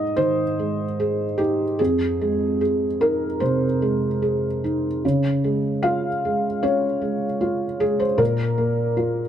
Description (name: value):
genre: neoclassical minimalist piano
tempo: 75 BPM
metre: 4/4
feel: rubato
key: unclear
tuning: A4 = 441 Hz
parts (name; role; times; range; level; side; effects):
- felt-muted upright piano; solo; 0.0-9.3 s; F2 to F5; -20 LUFS; equal; none
room: light reverb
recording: close, detailed microphones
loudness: -20 LUFS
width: side -9 dB against mid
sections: 0.0-9.3 A section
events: none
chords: 0.0 Ab; 1.8 Fm7; 5.0 Db; 8.2 Bb5